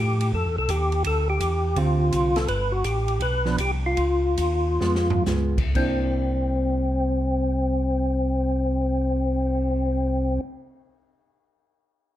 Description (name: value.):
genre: soul jazz organ trio.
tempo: 118-168 BPM.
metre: 4/4.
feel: swing 66% on 8ths.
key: C mixolydian.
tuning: A4 = 441 Hz.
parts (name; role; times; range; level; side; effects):
percussive tonewheel organ; melody; 0.0-10.4 s; C4 to B4; -24 LUFS; left 1 dB; slow rotary speaker, chorus vibrato.
mellow tonewheel organ; bass; 0.0-10.4 s; G1 to A2; -25 LUFS; equal; slow rotary speaker.
open jazz drum kit; drums; 0.2-9.7 s; crash cymbal, cymbal swell, hi-hat, kick drum, ride cymbal, snare drum, toms; -31 LUFS; right 1 dB; none.
hollow-body jazz guitar; accompaniment; 1.8-10.5 s; D3 to G4; -28 LUFS; right 3 dB; none.
room: moderate large studio reverb, RT60 1.1 s.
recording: dark, warm production.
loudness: -21 LUFS.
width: side -12 dB against mid.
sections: 0.0-5.8 A section; 5.8-9.8 B section.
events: slowing down 2.5-5.8; drum fill 4.8-5.3.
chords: 0.0 Fmaj9; 1.1 Dm11; 2.5 G; 4.0 Db7; 5.8 C9.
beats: 0.34 0.70 | 1.05 1.41 1.77 2.13 | 2.48 2.84 3.21 3.58 | 3.97 4.38 4.81 5.26 | 5.75 6.26 6.78 7.29 | 7.80 8.31 8.82 9.33.